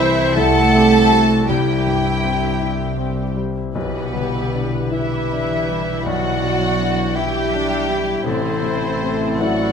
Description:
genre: cinematic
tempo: 53 BPM (dotted quarters)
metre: 6/8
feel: uneven beats, rubato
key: unclear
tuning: A4 = 438 Hz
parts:
  - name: rich studio violin section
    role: melody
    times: 0.0-9.7 s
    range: B4 to A5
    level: -25 LUFS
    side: left 2 dB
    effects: none
  - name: bright clarinet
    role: second line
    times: 0.0-9.7 s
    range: D4 to C5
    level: -30 LUFS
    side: right 1 dB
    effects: none
  - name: hollow concert flute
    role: second line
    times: 0.0-9.7 s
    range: G4 to F#5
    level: -26 LUFS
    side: left 2 dB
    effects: none
  - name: warm studio violin section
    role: second line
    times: 0.0-9.7 s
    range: B3 to A4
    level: -26 LUFS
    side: left 1 dB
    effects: none
  - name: rich studio viola section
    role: accompaniment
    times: 0.0-9.7 s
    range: B3 to A4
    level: -25 LUFS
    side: right 5 dB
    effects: none
  - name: warm baby grand piano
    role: accompaniment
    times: 0.0-9.7 s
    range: A1 to E4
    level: -26 LUFS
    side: left 3 dB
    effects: none
  - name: mellow French horn section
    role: sustained chords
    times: 0.0-9.7 s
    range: E3 to E4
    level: -27 LUFS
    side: left 3 dB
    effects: none
  - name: concert harp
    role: arpeggios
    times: 0.0-9.7 s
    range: A2 to D6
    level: -26 LUFS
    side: left 11 dB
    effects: none
  - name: rich studio double bass section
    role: bass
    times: 0.0-9.7 s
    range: A1 to C2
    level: -26 LUFS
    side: right 4 dB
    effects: none
  - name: warm studio cello section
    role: bass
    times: 0.0-9.7 s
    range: B2 to A3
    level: -23 LUFS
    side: right 4 dB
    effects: none
  - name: timpani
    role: percussion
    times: 3.8-4.9 s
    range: B2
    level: -36 LUFS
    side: right 2 dB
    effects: none
room: moderate scoring stage reverb, RT60 1.7 s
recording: close, detailed microphones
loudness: -16 LUFS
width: side -7 dB against mid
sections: 0.0-9.7 A section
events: none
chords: 0.0 C; 3.8 G6/B; 8.3 Am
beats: 0.37 | 1.49 2.60 | 3.75 4.93 | 6.07 7.17 | 8.25 9.42

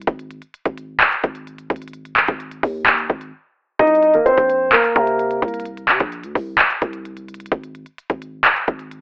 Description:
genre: hip hop, trap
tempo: 129 BPM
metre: 4/4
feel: half-time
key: C minor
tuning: A4 = 440 Hz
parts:
  - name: growling 808-style bass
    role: bass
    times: 0.0-9.0 s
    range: Ab1 to C3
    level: -26 LUFS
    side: equal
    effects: none
  - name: trap drum kit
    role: drums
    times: 0.0-9.0 s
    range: handclaps, hi-hat, kick drum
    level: -15 LUFS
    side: equal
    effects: none
  - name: dark concert grand piano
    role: melody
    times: 3.8-5.6 s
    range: Bb3 to Eb5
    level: -14 LUFS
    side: equal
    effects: low-pass filter, cassette tape
room: light reverb, digital ambience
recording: home recording on cassette, telephone sound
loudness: -16 LUFS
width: side -25 dB against mid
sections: 0.0-9.0 A section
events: break 0.0-3.8, 5.7-9.0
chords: 0.1 Ab5; 3.8 C7(no3); 7.5 N.C.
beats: | 0.07 0.54 1.00 1.47 | 1.94 2.40 2.87 3.33 | 3.79 4.26 4.72 5.19 | 5.66 6.12 6.59 7.05 | 7.52 7.98 8.45 8.91

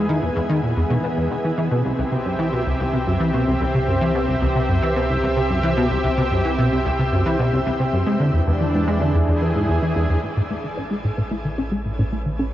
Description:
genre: ambient, sequencer-driven space music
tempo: 111 BPM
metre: 4/4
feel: straight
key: unclear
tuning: A4 = 440 Hz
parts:
  - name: lush unison pad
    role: sustained chords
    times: 0.0-12.5 s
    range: A2 to E5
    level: -23 LUFS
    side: equal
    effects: chorus
  - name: plucky analog bass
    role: riff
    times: 0.0-12.5 s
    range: C2 to C#4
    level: -20 LUFS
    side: equal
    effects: ensemble chorus, ping-pong delay
  - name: warm sub bass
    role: bass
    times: 0.0-12.5 s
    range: A1 to E2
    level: -28 LUFS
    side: equal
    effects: none
  - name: bubbling stepped-filter texture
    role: texture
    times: 10.2-12.5 s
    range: B4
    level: -49 LUFS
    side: right 3 dB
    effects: none
  - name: soft round pluck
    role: arpeggios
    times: 10.4-12.5 s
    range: A3 to A4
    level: -38 LUFS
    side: right 2 dB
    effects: none
room: wet shimmer reverb, RT60 7.7 s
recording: worn, warbling old tape, cassette tape, warbly pitch drift, nothing above 7.8 kHz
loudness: -18 LUFS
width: side -13 dB against mid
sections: 0.0-10.2 A section; 10.2-12.5 B section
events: fade-in on sub bass 0.0-10.2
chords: 0.0 E; 1.6 C; 8.1 E7; 10.2 Aadd9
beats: 0.50 1.04 | 1.58 2.12 2.66 3.20 | 3.74 4.28 4.82 5.36 | 5.91 6.45 6.99 7.53 | 8.07 8.61 9.15 9.69 | 10.23 10.77 11.31 11.85 | 12.39

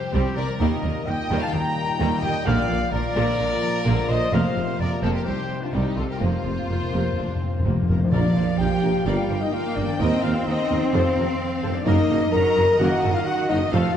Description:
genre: cinematic, heroic adventure film score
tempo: 129 BPM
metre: 4/4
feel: straight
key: unclear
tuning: A4 = 441 Hz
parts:
  - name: rich studio violin section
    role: melody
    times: 0.0-14.0 s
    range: C4 to G5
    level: -32 LUFS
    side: left 4 dB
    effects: none
  - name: dark clarinet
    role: second line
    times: 0.0-14.0 s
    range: F4 to Bb5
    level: -33 LUFS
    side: left 2 dB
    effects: none
  - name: concert harp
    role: arpeggios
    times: 0.0-14.0 s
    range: F2 to Bb4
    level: -34 LUFS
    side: left 8 dB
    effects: none
  - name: dark trumpet section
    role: stabs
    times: 0.0-13.8 s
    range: F4 to Bb5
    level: -30 LUFS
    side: equal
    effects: none
  - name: rich symphonic violin section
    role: second line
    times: 0.1-14.0 s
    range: G3 to Bb5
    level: -35 LUFS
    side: left 3 dB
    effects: none
  - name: clear symphonic viola section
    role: accompaniment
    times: 0.1-13.9 s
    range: C3 to Eb5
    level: -33 LUFS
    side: equal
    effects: none
  - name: rich symphonic cello section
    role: bass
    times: 0.1-14.0 s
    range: C2 to C4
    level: -27 LUFS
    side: right 3 dB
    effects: none
  - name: rich symphonic double bass section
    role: bass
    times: 0.1-13.8 s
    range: F1 to Gb2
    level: -27 LUFS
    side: right 2 dB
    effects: none
  - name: clear trombone section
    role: sustained chords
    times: 0.6-13.9 s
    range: Bb2 to Bb3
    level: -34 LUFS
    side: right 2 dB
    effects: none
  - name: mellow French horn section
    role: sustained chords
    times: 0.6-14.0 s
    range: Bb3 to Bb4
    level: -27 LUFS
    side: left 3 dB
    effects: none
  - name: timpani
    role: percussion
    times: 2.5-8.8, 13.7-14.0 s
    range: F2 to Bb2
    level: -26 LUFS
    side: left 1 dB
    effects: none
  - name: mellow hollow large flute ensemble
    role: second line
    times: 7.9-14.0 s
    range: Bb4 to Bb5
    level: -36 LUFS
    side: left 2 dB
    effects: none
  - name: warm tuba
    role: bass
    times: 8.1-13.8 s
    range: F1 to Eb2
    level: -29 LUFS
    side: right 3 dB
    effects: none
room: wet concert hall reverb, RT60 2.3 s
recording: dark, warm production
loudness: -20 LUFS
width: side -9 dB against mid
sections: 0.0-8.1 A section; 8.1-14.0 B section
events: timpani fill 6.2-8.1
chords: 0.0 Csus4; 0.6 Eb; 2.5 Bb; 4.3 Fsus4; 5.3 Cm; 6.2 Fsus4; 8.1 Bb; 9.1 Gm7; 10.0 Eb; 10.9 F; 11.9 Ebm/Gb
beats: 0.14 | 0.60 1.07 1.53 2.00 | 2.46 2.93 3.40 3.86 | 4.33 4.80 5.27 5.74 | 6.22 6.70 7.17 7.65 | 8.12 8.59 9.06 9.53 | 10.00 10.47 10.93 11.40 | 11.87 12.33 12.80 13.26 | 13.73

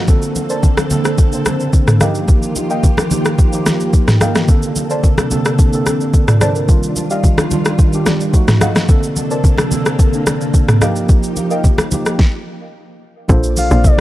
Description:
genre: amapiano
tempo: 109 BPM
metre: 4/4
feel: straight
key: Bb major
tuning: A4 = 440 Hz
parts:
  - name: mellow tine electric piano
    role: accompaniment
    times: 0.0-14.0 s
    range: Db3 to D5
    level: -20 LUFS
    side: right 2 dB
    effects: none
  - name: soft string machine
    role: sustained chords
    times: 0.0-14.0 s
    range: C3 to D5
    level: -22 LUFS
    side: equal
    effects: ensemble chorus
  - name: smooth R&B drum kit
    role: drums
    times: 0.1-14.0 s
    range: hi-hat, kick drum, rim click, shaker, snare drum, toms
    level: -12 LUFS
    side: equal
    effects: overdrive
  - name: congas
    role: percussion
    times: 0.4-14.0 s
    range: none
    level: -22 LUFS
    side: equal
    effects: none
  - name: deep mellow chord stab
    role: stabs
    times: 0.5-13.8 s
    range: G4 to A5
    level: -25 LUFS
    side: equal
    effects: chorus, tape echo
  - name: tight log drum bass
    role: bass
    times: 13.3-14.0 s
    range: Bb1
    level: -13 LUFS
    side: equal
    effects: none
  - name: soft octave-layered synth lead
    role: melody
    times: 13.6-14.0 s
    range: D5 to F5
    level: -17 LUFS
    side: left 3 dB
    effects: chorus
room: little or no reverb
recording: dry, gritty hardware recording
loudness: -11 LUFS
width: side -15 dB against mid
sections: 0.0-13.3 A section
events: stop 12.2-13.3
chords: 0.1 Bbmaj9; 2.0 F9sus4; 4.5 Bbmaj9; 6.7 Ebmaj9; 8.3 F7b9; 8.9 Bbmaj9; 10.8 F9sus4; 13.3 Bbmaj9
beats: | 0.08 0.63 1.18 1.73 | 2.28 2.83 3.38 3.94 | 4.49 5.04 5.59 6.14 | 6.69 7.24 7.79 8.34 | 8.89 9.44 9.99 10.54 | 11.09 11.64 12.19 12.74 | 13.29 13.84

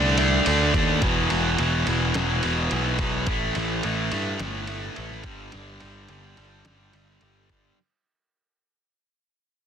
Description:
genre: hard rock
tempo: 107 BPM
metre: 4/4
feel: straight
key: unclear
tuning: A4 = 440 Hz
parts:
  - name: biting overdriven guitar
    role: riff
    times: 0.0-7.8 s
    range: E2 to D4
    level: -24 LUFS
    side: equal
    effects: none
  - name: fuzz picked electric bass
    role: bass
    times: 0.0-7.7 s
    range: E1 to G2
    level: -27 LUFS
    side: equal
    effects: overdrive
  - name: lo-fi sampler-style drum kit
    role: drums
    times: 0.2-7.6 s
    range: kick drum, ride cymbal, snare drum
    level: -30 LUFS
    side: right 1 dB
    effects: none
room: light reverb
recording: dense, heavily limited modern master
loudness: -21 LUFS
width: side -8 dB against mid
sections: 0.0-7.8 A section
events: fade-out 0.0-7.8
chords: 0.0 D5; 1.0 E5; 3.3 A5; 5.2 G5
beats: 0.46 | 1.02 1.58 2.15 2.71 | 3.27 3.83 4.40 4.96 | 5.52 6.09 6.65 7.22

